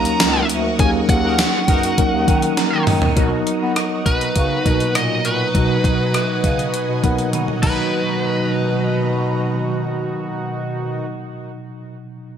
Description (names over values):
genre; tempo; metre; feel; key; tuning
1980s-style pop; 101 BPM; 4/4; straight; B major; A4 = 440 Hz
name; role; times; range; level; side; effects
biting lead guitar; melody; 0.0-11.1 s; B4 to A#5; -23 LUFS; equal; overdrive, digital delay
mellow tine electric piano; accompaniment; 0.0-12.4 s; B2 to A#5; -22 LUFS; equal; medium stereo tremolo
string machine, cellos; sustained chords; 0.0-11.1 s; B2 to D#6; -29 LUFS; equal; ensemble chorus
twelve-string electric guitar; riff; 0.0-11.4 s; F#3 to F#4; -30 LUFS; right 7 dB; ensemble chorus, digital delay
warm bass clarinet; bass; 0.0-11.1 s; C#2 to B3; -24 LUFS; equal; none
gated 80s digital drum machine; drums; 0.1-7.8 s; crash cymbal, hi-hat, kick drum, rim click, snare drum, tambourine, toms; -19 LUFS; equal; gated reverb, gated reverb snare, overdrive
analog synth brass; stabs; 1.2-11.1 s; D#3 to A#4; -28 LUFS; right 1 dB; chorus, digital delay
room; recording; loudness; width
light reverb, digital ambience; bright 1980s-style digital production; -16 LUFS; side -8 dB against mid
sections
0.0-3.2 A section; 3.2-7.9 B section; 7.9-10.3 C section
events
tine electric piano fill 2.3-3.2; drum fill 2.6-3.2, 7.3-7.9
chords
0.0 D#m7; 3.2 Bmaj7